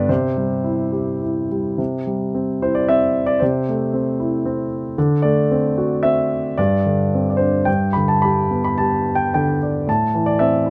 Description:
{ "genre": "classical, lyrical solo piano", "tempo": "101-117 BPM", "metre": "3/4", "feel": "rubato", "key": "C major", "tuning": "A4 = 440 Hz", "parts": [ { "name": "dark grand piano", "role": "solo", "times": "0.0-10.7 s", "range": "G2 to B5", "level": "-19 LUFS", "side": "equal", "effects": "none" } ], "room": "light reverb", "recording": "close, detailed microphones", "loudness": "-19 LUFS", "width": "mono", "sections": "0.0-1.8 A section; 1.8-10.7 B section", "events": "none", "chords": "0.1 C; 3.4 Am/C; 5.0 D7; 6.6 Gsus4; 7.7 G; 9.9 Am", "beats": "| 0.09 0.64 1.22 | 1.79 2.34 2.88 | 3.41 3.93 4.45 | 4.97 5.51 6.05 | 6.58 7.12 7.67 | 8.23 8.79 9.34 | 9.87 10.39" }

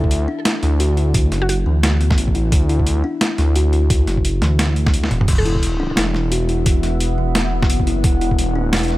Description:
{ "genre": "half-time drum and bass", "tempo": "174 BPM", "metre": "4/4", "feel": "swing 59% on 16ths, half-time", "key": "unclear", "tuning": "A4 = 440 Hz", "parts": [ { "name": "mallet-like synth pluck", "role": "melody", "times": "0.0-1.6, 5.4-5.7 s", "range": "F#4 to A4", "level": "-29 LUFS", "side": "right 1 dB", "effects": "chorus, digital delay" }, { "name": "kalimba", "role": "arpeggios", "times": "0.0-8.9 s", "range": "E3 to F#4", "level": "-24 LUFS", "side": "left 3 dB", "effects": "dub echo" }, { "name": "dark detuned saw bass", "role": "bass", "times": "0.0-9.0 s", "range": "E1 to D2", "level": "-18 LUFS", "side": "equal", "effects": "tube saturation" }, { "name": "electronic kick drum", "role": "drums", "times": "0.0-8.4 s", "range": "none", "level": "-17 LUFS", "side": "equal", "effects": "overdrive" }, { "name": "boom bap sampler-style drum kit", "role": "drums", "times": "0.1-9.0 s", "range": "crash cymbal, hi-hat, snare drum, toms", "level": "-21 LUFS", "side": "equal", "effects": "overdrive" }, { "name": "deep dark ambient pad", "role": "sustained chords", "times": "6.2-9.0 s", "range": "B3 to F#5", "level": "-26 LUFS", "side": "equal", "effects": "chorus, built-in reverb, sidechain pumping" } ], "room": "little or no reverb", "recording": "none", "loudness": "-15 LUFS", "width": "side -17 dB against mid", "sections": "0.0-5.3 A section; 5.3-9.0 A section", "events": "drop 0.0-5.3, 5.3-9.0; kick drops out 4.9-5.3; drum fill 5.0", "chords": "0.0 Esus2", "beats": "0.11 0.45 0.80 | 1.14 1.49 1.83 2.18 | 2.52 2.87 3.21 3.56 | 3.90 4.25 4.59 4.94 | 5.28 5.63 5.97 6.32 | 6.66 7.01 7.35 7.70 | 8.04 8.38 8.73" }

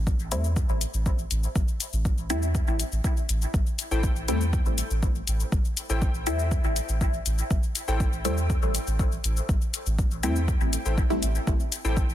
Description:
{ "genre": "dub techno", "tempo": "121 BPM", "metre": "4/4", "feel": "straight", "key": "A minor", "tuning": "A4 = 440 Hz", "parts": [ { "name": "soft dub sub bass", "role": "bass", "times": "0.0-12.1 s", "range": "A1 to E2", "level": "-27 LUFS", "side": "equal", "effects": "tube saturation, sidechain pumping" }, { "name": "electronic cabasa and hi-hat", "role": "drums", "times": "0.1-12.1 s", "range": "none", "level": "-33 LUFS", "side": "left 6 dB", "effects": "overdrive" }, { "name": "electronic kick drum", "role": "drums", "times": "0.1-12.1 s", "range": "none", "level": "-25 LUFS", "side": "equal", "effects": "overdrive" }, { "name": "filtered dub chord stab", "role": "stabs", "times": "0.3-11.3 s", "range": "G3 to E4", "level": "-32 LUFS", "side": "left 1 dB", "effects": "phaser, sidechain pumping, dub echo" }, { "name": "warbly lo-fi synth keys", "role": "riff", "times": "3.9-12.0 s", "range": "E4 to G5", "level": "-34 LUFS", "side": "left 3 dB", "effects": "chorus, vintage 12-bit sampler grit, sidechain pumping, dub echo" } ], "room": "little or no reverb", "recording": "dense, heavily limited modern master", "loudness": "-23 LUFS", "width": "side -12 dB against mid", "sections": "0.0-12.1 A section", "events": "none", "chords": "0.0 Am7", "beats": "0.07 0.56 1.06 | 1.56 2.05 2.55 3.04 | 3.54 4.04 4.53 5.03 | 5.52 6.02 6.51 7.01 | 7.51 8.00 8.50 8.99 | 9.49 9.99 10.48 10.98 | 11.47 11.97" }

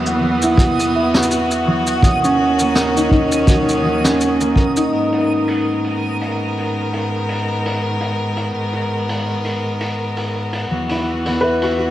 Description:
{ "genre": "folktronica", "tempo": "83 BPM", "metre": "4/4", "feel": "swing 56% on 16ths", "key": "G# minor", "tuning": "A4 = 440 Hz", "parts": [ { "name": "clear string quartet", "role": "sustained chords", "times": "0.0-11.9 s", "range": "D#2 to A#4", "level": "-20 LUFS", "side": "equal", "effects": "none" }, { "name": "concert harp", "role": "arpeggios", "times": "0.0-11.9 s", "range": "F#3 to F#5", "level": "-18 LUFS", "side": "equal", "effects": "digital delay" }, { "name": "backwards swelling texture", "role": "texture", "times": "0.0-4.9 s", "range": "D#6", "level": "-28 LUFS", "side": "right 2 dB", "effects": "built-in reverb" }, { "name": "jazz brush drum kit", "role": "drums", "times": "0.1-11.7 s", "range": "hi-hat, shaker, snare drum", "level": "-24 LUFS", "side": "equal", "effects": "low-pass filter on hats, low-pass filter on snare, low-pass filter on perc, low-pass filter on room" }, { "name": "kick drum", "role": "drums", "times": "0.6-4.7 s", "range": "none", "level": "-16 LUFS", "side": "equal", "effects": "none" }, { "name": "felt-muted upright piano", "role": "melody", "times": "11.4-11.9 s", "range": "B4", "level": "-17 LUFS", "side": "left 2 dB", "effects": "none" } ], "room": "moderate concert hall reverb, RT60 2.2 s", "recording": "vinyl crackle", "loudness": "-15 LUFS", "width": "side -13 dB against mid", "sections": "0.0-4.9 A section; 4.9-11.9 B section", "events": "none", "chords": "0.0 Esus2; 2.0 D#m7; 4.9 G#madd9; 10.7 Esus2", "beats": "0.58 1.30 | 2.02 2.75 3.47 4.19 | 4.92 5.64 6.36 7.08 | 7.81 8.53 9.25 9.98 | 10.70 11.42" }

